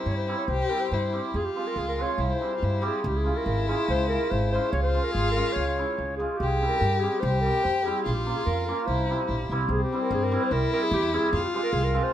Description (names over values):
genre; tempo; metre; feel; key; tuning
klezmer; 144 BPM; 2/4; straight; C phrygian dominant; A4 = 439 Hz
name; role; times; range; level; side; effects
breathy clarinet; melody; 0.0-12.1 s; F4 to Db5; -29 LUFS; left 1 dB; none
warm violin; second line; 0.0-12.1 s; C4 to G4; -29 LUFS; left 3 dB; none
hammered dulcimer; accompaniment; 0.0-12.1 s; G3 to G4; -31 LUFS; right 3 dB; none
upright bass; bass; 0.1-12.0 s; Ab1 to G2; -28 LUFS; equal; none
room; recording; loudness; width
moderate studio ambience, RT60 0.5 s; none; -23 LUFS; side -11 dB against mid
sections
0.0-3.0 A section; 3.0-9.7 B section; 9.7-12.1 A section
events
speeding up 0.0-12.1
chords
0.0 C; 1.3 Fm; 2.2 C; 3.0 Db; 6.4 C5; 8.1 Bbm; 8.9 C; 11.3 Fm